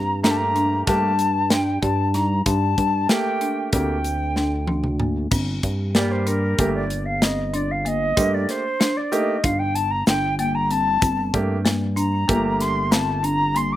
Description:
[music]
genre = progressive instrumental, band music in an uneven meter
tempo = 189 BPM (eighths)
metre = 9/8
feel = straight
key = G minor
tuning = A4 = 440 Hz
[part]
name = concert flute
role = melody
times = 0.0-13.8 s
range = Bb4 to D6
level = -23 LUFS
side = left 1 dB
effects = slapback echo
[part]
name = chorused synth bass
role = bass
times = 0.0-13.8 s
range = G1 to G2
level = -24 LUFS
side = equal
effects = none
[part]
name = clear baby grand piano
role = accompaniment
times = 0.2-13.2 s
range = G3 to G4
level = -26 LUFS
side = right 3 dB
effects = slapback echo
[part]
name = folk marimba with medium hard mallets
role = arpeggios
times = 0.2-13.8 s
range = Bb3 to G4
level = -28 LUFS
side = left 2 dB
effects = none
[part]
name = modern studio drum kit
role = drums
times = 0.2-13.7 s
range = crash cymbal, hi-hat, kick drum, snare drum, toms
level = -22 LUFS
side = equal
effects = none
[part]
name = tube shaker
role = percussion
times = 0.6-13.2 s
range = none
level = -37 LUFS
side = right 4 dB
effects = none
[sound]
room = little or no reverb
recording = recorded outdoors, with no room sound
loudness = -19 LUFS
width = side -13 dB against mid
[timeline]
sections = 0.0-5.3 A section; 5.3-13.8 B section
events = drum fill 4.4-5.3; flute solo 5.3-13.8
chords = 0.0 Gmadd9

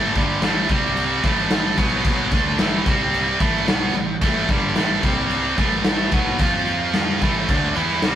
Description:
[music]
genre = heavy metal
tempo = 111 BPM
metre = 4/4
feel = straight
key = A minor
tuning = A4 = 440 Hz
[part]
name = distorted electric guitar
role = riff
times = 0.0-8.2 s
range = G2 to F4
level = -28 LUFS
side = left 6 dB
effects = overdrive
[part]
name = heavy high-gain guitar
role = riff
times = 0.0-8.2 s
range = G2 to F4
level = -20 LUFS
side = right 4 dB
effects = distortion
[part]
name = fuzz fingered electric bass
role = bass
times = 0.0-8.2 s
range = G1 to F2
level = -30 LUFS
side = equal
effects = overdrive
[part]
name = big rock drum kit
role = drums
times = 0.2-8.2 s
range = crash cymbal, kick drum, snare drum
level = -21 LUFS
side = left 1 dB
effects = none
[sound]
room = moderate studio reverb, RT60 0.6 s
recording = rough rehearsal-room recording, warm saturation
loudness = -17 LUFS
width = side -10 dB against mid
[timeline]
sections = 0.0-8.2 A section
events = none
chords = 0.0 A5; 0.7 C5; 1.2 A5; 1.8 B5; 2.3 A5; 2.9 C5; 3.4 A5; 5.0 C5; 5.6 A5; 6.4 F5; 7.2 A5

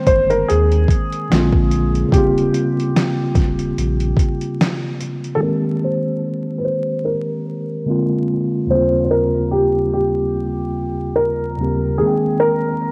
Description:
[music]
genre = lo-fi hip hop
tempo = 73 BPM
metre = 4/4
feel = swing 57% on 16ths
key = Ab major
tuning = A4 = 440 Hz
[part]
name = felt-muted upright piano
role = melody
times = 0.0-12.9 s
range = G4 to C5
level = -22 LUFS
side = equal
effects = low-pass filter, cassette tape
[part]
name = barky tine electric piano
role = accompaniment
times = 0.0-12.9 s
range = Eb2 to G5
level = -22 LUFS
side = equal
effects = cassette tape, low-pass filter
[part]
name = saturated sub bass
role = bass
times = 0.1-4.1 s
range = Eb1 to Eb2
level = -22 LUFS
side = equal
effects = none
[part]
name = dusty soul sampler-style drum kit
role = drums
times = 0.1-5.4 s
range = hi-hat, kick drum, snare drum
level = -20 LUFS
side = equal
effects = overdrive, cassette tape
[sound]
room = light reverb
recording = home recording on cassette, vinyl crackle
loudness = -18 LUFS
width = mono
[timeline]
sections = 0.0-5.4 A section; 5.4-12.9 B section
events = none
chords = 0.0 Abmaj9; 1.3 Bb7; 2.1 Eb13; 5.4 Abmaj9; 7.9 Bb7; 8.7 Eb13; 12.0 Abmaj9

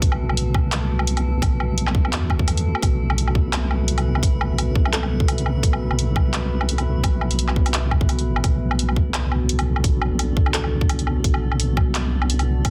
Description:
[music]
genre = half-time drum and bass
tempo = 171 BPM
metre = 4/4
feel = swing 55% on 16ths, half-time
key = B phrygian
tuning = A4 = 440 Hz
[part]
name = dark analog pad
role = sustained chords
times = 0.0-12.7 s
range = B3 to E5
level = -33 LUFS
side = equal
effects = chorus, phaser, sidechain pumping
[part]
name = deep soft wobble bass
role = bass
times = 0.0-12.7 s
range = A1 to E2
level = -24 LUFS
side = equal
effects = chorus
[part]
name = drum and bass drum kit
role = drums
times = 0.0-12.7 s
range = handclaps, hi-hat, woodblock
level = -28 LUFS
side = equal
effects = none
[part]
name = electronic kick drum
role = drums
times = 0.0-12.7 s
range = none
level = -22 LUFS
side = equal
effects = none
[part]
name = metallic inharmonic drone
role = texture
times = 0.0-12.7 s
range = A3 to B4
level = -36 LUFS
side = equal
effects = chorus, built-in reverb
[part]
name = thumb-piano-like synth pluck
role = melody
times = 4.9-5.3, 10.5-10.9 s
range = A4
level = -37 LUFS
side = equal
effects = chorus, vintage 12-bit sampler grit, digital delay
[sound]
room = light reverb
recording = dense, heavily limited modern master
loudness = -21 LUFS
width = mono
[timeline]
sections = 0.0-12.7 A section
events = none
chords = 0.0 Bm

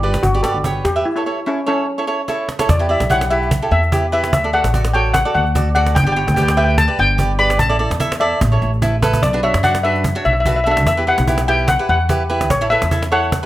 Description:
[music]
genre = calypso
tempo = 147 BPM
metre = 4/4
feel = swing 53% on 16ths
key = unclear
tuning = A4 = 443 Hz
[part]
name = steel pan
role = melody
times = 0.0-13.5 s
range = C#4 to B5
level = -18 LUFS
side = left 2 dB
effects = none
[part]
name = cavaquinho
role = accompaniment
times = 0.0-13.5 s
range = D4 to E5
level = -20 LUFS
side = right 2 dB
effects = none
[part]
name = upright bass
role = bass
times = 0.0-13.4 s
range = G1 to F#2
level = -18 LUFS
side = equal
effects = none
[part]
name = cajon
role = drums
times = 0.0-13.4 s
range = none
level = -22 LUFS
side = right 2 dB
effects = none
[sound]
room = light reverb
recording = none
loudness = -14 LUFS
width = side -15 dB against mid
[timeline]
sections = 0.0-2.7 A section; 2.7-13.5 B section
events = break 1.1-2.7; drum fill 2.3-2.7, 8.8-9.2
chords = 0.0 G; 1.1 A; 2.7 Em; 4.3 D; 6.0 G; 7.6 Asus4; 8.4 A; 9.2 Bm; 10.9 Em; 12.5 A

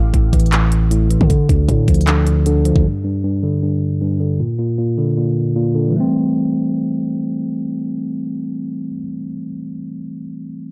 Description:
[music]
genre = hip hop, trap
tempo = 155 BPM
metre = 4/4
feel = half-time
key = A minor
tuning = A4 = 439 Hz
[part]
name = mellow tine electric piano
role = accompaniment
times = 0.0-10.7 s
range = G2 to C4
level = -20 LUFS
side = equal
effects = none
[part]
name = long sustained 808-style bass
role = bass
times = 0.0-2.8 s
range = A1 to D3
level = -18 LUFS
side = equal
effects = none
[part]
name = trap drum kit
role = drums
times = 0.1-2.8 s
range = handclaps, hi-hat, kick drum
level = -20 LUFS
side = equal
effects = none
[sound]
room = digital ambience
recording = dry, gritty hardware recording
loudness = -17 LUFS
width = mono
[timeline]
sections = 0.0-5.9 A section; 5.9-9.0 B section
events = none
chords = 0.0 A5; 1.3 Dm; 2.8 G5; 4.4 Bb; 5.9 Am7

